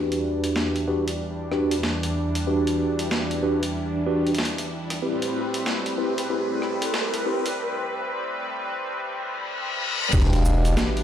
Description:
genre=glitch hop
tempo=94 BPM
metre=4/4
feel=swing 62% on 16ths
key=E minor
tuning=A4 = 442 Hz
part: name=warm analog pad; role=sustained chords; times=0.0-11.0 s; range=E2 to B4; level=-28 LUFS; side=equal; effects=chorus, tremolo, sidechain pumping
part: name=mellow tine electric piano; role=stabs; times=0.0-11.0 s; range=C4 to B4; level=-26 LUFS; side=equal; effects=medium stereo tremolo, vintage 12-bit sampler grit, sidechain pumping, ping-pong delay
part: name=riser, reverse cymbal and sub drop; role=sound effects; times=2.2-11.0 s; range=none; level=-30 LUFS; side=left 1 dB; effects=none
part: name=boom bap sampler-style drum kit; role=drums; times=0.1-11.0 s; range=crash cymbal, hi-hat, rim click, snare drum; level=-28 LUFS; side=equal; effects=high-pass filter on hats, high-pass filter on snare, high-pass filter on cymbals
part: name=gritty driven synth bass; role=bass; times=10.1-10.8 s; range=E1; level=-20 LUFS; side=equal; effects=distortion, tube saturation
part: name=electronic kick drum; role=drums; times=10.1-10.3 s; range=none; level=-21 LUFS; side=equal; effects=none
part: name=tube shaker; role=percussion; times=10.1-10.9 s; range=none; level=-38 LUFS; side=right 3 dB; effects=none
room=wet studio reverb, RT60 0.6 s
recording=played on a big sound system in a bare room, stone room reverb, high-pass filter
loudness=-22 LUFS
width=side -10 dB against mid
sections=0.0-10.1 A section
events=build-up 0.0-10.1; filter sweep 0.0-10.1; riser 2.2-7.6; break 7.6-10.1; reverse cymbal 9.3-10.1; impact 10.1-11.0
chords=0.0 Em7; 5.0 Am9; 10.1 Em7

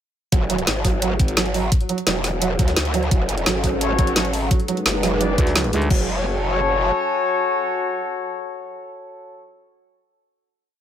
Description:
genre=dark technical drum and bass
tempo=172 BPM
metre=4/4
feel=straight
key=F# minor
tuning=A4 = 436 Hz
part: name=felt-muted upright piano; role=arpeggios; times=0.3-6.1 s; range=F#3 to F#4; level=-26 LUFS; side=right 5 dB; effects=sidechain pumping, ping-pong delay
part: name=growl bass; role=bass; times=0.3-6.9 s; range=E1 to D2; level=-22 LUFS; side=equal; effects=chorus, overdrive
part: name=drum and bass drum kit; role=drums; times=0.3-6.0 s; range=crash cymbal, hi-hat, snare drum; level=-23 LUFS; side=equal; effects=none
part: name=electronic kick drum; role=drums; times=0.3-6.0 s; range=none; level=-19 LUFS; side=equal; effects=none
part: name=jungle sampler-style drum kit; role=drums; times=0.3-5.9 s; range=hi-hat, snare drum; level=-31 LUFS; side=left 1 dB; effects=none
part: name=dark analog pad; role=sustained chords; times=3.1-9.5 s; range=G#3 to A5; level=-27 LUFS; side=equal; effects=wide subtle chorus, sidechain pumping
part: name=warm brass ensemble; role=stabs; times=3.8-9.5 s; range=F#4 to D5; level=-24 LUFS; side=left 4 dB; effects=ping-pong delay
part: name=growling FM bass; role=bass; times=5.4-5.9 s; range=D2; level=-21 LUFS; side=equal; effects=none
room=light reverb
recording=none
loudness=-18 LUFS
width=side -9 dB against mid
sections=0.3-5.9 drop; 5.9-8.7 final chord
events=drop 0.3-5.9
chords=0.3 F#sus2; 1.7 D; 3.1 F#m; 4.5 G#dim; 5.9 F#m

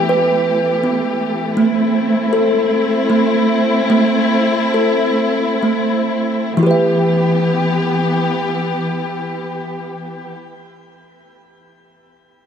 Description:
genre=world meditative, meditative tuned percussion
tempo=40-54 BPM (dotted quarters)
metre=6/8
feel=straight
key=E minor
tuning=A4 = 445 Hz
part: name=warm symphonic string section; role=sustained chords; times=0.0-10.3 s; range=E3 to G4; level=-18 LUFS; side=left 2 dB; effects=shimmer reverb
part: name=kalimba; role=arpeggios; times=0.0-10.4 s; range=E3 to E5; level=-16 LUFS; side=right 1 dB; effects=shimmer reverb
room=wet echo chamber reverb, RT60 1.4 s, small room ambience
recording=none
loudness=-14 LUFS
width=side -8 dB against mid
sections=0.0-6.6 A section; 6.6-9.6 B section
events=slowing down 1.6-6.6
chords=0.0 Em; 1.6 Am; 6.6 Em

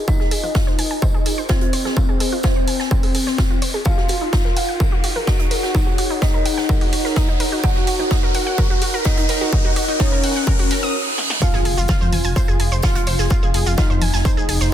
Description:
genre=melodic techno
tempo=127 BPM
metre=4/4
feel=straight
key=F phrygian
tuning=A4 = 440 Hz
part: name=wide unison pluck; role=arpeggios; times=0.0-14.7 s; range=Eb4 to Ab6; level=-26 LUFS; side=right 1 dB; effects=cassette tape, sidechain pumping, ping-pong delay
part: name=riser, reverse cymbal and impact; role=sound effects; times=0.0-13.3 s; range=none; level=-28 LUFS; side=right 1 dB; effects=none
part: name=warbly tape-like pad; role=texture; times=0.0-14.7 s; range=Eb4 to Ab5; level=-31 LUFS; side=right 1 dB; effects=chorus, built-in reverb, sidechain pumping
part: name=analog synth brass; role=melody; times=0.1-14.7 s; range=C4 to Gb4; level=-25 LUFS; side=left 1 dB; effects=chorus, sidechain pumping, ping-pong delay
part: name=dark detuned synth bell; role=second line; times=0.1-14.7 s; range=C5 to Gb5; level=-30 LUFS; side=equal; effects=chorus, phaser, sidechain pumping, ping-pong delay
part: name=electronic kick drum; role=drums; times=0.1-14.3 s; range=none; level=-18 LUFS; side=equal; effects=distortion
part: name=punchy analog drum machine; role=drums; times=0.1-14.6 s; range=congas, hi-hat, snare drum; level=-26 LUFS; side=equal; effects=high-pass filter on hats, high-pass filter on perc, high-pass filter on snare
part: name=street-band drum kit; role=drums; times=0.1-14.7 s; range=hi-hat, snare drum, tambourine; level=-32 LUFS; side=right 1 dB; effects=sidechain pumping on hats, high-pass filter on hats, high-pass filter on snare, sidechain pumping on perc, high-pass filter on perc, high-pass filter on room
part: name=shekere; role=percussion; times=11.4-14.7 s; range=none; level=-31 LUFS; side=right 5 dB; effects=none
part: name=swelling detuned saw bass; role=bass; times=11.5-14.7 s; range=F1 to F2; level=-20 LUFS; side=equal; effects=sidechain pumping
room=light reverb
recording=dense, heavily limited modern master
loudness=-16 LUFS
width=side -11 dB against mid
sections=0.0-11.4 A section; 11.4-14.7 B section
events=build-up 0.0-11.4; riser 0.0-11.4; filter sweep on synth arpeggio sound 0.0-11.4; reverse cymbal 10.5-11.4; stop 10.9-11.4; drum fill 11.2; drop 11.4-14.7; impact 11.4-13.3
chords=0.0 Fm; 3.9 Ebm; 11.4 Fm

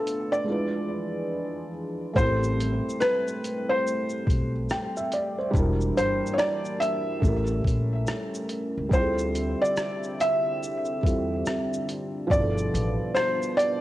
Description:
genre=lo-fi hip hop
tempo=71 BPM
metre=4/4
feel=swing 62% on 16ths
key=A minor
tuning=A4 = 439 Hz
part: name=felt-muted upright piano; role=melody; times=0.0-13.8 s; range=A4 to E5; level=-27 LUFS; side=equal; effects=cassette tape, tape echo
part: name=felt-muted upright piano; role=accompaniment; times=0.0-13.8 s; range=B2 to G5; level=-30 LUFS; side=right 1 dB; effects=cassette tape
part: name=dark analog pad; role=sustained chords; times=0.0-13.8 s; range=D3 to E5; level=-36 LUFS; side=left 2 dB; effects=chorus
part: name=boom bap sampler-style drum kit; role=drums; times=0.1-13.8 s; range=hi-hat, kick drum, rim click, shaker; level=-28 LUFS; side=equal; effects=none
part: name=upright bass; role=bass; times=2.2-13.0 s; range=E1 to E2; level=-28 LUFS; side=equal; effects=none
room=light reverb, small room ambience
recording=home recording on cassette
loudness=-24 LUFS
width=side -15 dB against mid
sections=0.0-2.2 A section; 2.2-13.8 B section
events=break 0.5-2.2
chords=0.5 E7b9; 2.2 Am9; 5.5 Em7b5; 7.2 A7b9; 8.9 Dm11; 12.3 G13

